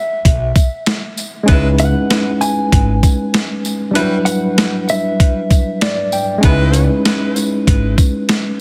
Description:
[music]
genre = hip hop, boom-bap hip-hop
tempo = 97 BPM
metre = 4/4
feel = swing 63% on 16ths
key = unclear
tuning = A4 = 440 Hz
[part]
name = mellow electric guitar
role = melody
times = 0.0-5.8 s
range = E5 to G#5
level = -24 LUFS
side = equal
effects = delay
[part]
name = boom bap sampler-style drum kit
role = drums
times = 0.2-8.5 s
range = hi-hat, kick drum, shaker, snare drum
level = -16 LUFS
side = equal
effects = none
[part]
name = upright bass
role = bass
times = 0.3-7.9 s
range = G#1 to C#2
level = -18 LUFS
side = equal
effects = none
[part]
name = tambourine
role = percussion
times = 0.6-8.2 s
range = none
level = -30 LUFS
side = equal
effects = none
[part]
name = tine electric piano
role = accompaniment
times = 1.4-8.6 s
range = F#3 to G5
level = -19 LUFS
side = equal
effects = overdrive, cassette tape
[part]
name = clear saxophone section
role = stabs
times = 1.5-6.9 s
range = G3 to B4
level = -27 LUFS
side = equal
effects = delay
[sound]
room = light reverb, small room ambience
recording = heavily compressed radio sound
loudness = -15 LUFS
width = mono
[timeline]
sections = 0.0-8.6 A section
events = break 0.0-1.5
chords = 0.0 E5; 1.5 C#m9; 4.0 Em9; 6.4 C#m9

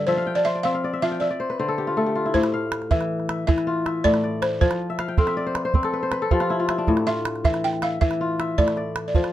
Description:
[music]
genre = west african traditional, West African string and xylophone music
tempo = 106 BPM (dotted quarters)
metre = 12/8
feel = straight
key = unclear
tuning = A4 = 441 Hz
[part]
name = balafon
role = melody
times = 0.0-9.3 s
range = A4 to G5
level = -24 LUFS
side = right 1 dB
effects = none
[part]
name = kora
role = arpeggios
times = 0.0-9.3 s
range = G2 to A5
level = -23 LUFS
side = left 2 dB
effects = none
[part]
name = calabash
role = percussion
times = 2.3-9.3 s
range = none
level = -22 LUFS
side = right 3 dB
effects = none
[sound]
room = light reverb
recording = dark, warm production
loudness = -20 LUFS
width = side -13 dB against mid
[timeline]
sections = 0.0-2.3 A section; 2.3-9.3 B section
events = kora fill 0.1-2.3, 4.9-6.9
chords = 0.1 F5; 1.2 D5; 2.3 Am; 4.6 F; 6.9 A5

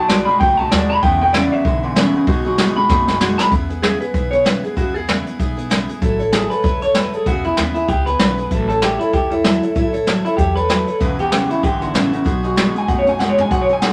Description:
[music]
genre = rockabilly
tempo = 192 BPM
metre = 4/4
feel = swing 58% on 8ths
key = E major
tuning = A4 = 441 Hz
[part]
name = electric guitar through a small old amp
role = melody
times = 0.0-13.9 s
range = E4 to B5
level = -20 LUFS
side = equal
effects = none
[part]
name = picked steel-string acoustic guitar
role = accompaniment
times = 0.0-13.9 s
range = C#3 to C#5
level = -26 LUFS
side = equal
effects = none
[part]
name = electric guitar through a small old amp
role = riff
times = 0.0-3.5, 11.0-13.9 s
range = E2 to A3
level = -23 LUFS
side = equal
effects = phaser
[part]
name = upright bass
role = bass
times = 0.0-13.9 s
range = E1 to E2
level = -28 LUFS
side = equal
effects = none
[part]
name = jazz brush drum kit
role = drums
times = 0.1-13.9 s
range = hi-hat, kick drum, snare drum, toms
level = -21 LUFS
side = equal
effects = none
[sound]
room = moderate studio reverb, RT60 0.6 s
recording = none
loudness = -17 LUFS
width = mono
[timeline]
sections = 0.0-3.5 A section; 3.5-13.9 B section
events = clean electric guitar solo 0.0-3.5; drum fill 2.9-3.5, 13.2-13.5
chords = 0.0 B6; 1.0 E6; 2.3 B6; 3.5 E6; 6.0 A6; 7.3 E6; 8.5 A6; 11.0 E6; 12.3 B6

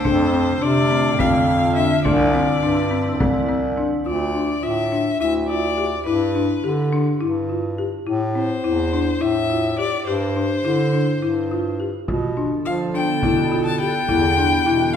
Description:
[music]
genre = contemporary instrumental, chamber music in an uneven meter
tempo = 210 BPM (eighths)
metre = 7/8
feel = straight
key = D dorian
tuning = A4 = 440 Hz
[part]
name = rich violin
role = melody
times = 0.0-15.0 s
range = B4 to A5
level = -23 LUFS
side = left 3 dB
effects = none
[part]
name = evolving wavetable pad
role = sustained chords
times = 0.0-4.0, 12.5-15.0 s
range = D3 to A4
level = -26 LUFS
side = right 3 dB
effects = chorus, built-in reverb
[part]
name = folk marimba with medium hard mallets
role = arpeggios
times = 0.0-14.9 s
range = C4 to G4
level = -21 LUFS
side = left 3 dB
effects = none
[part]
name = clear bass clarinet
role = bass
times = 0.1-15.0 s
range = C2 to F3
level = -23 LUFS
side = right 1 dB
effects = none
[part]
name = frame drum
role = percussion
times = 0.1-3.6, 12.1-15.0 s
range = none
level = -27 LUFS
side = right 1 dB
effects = none
[sound]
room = wet concert hall reverb, RT60 1.9 s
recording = minimal, uncompressed stereo recording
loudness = -18 LUFS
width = side -8 dB against mid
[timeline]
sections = 0.0-4.1 A section; 4.1-15.0 B section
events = none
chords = 0.0 F6; 2.0 Cadd9; 4.1 Dmadd9; 6.1 G; 8.1 Am; 10.1 Gsus4; 12.1 Bm7b5; 14.1 Em

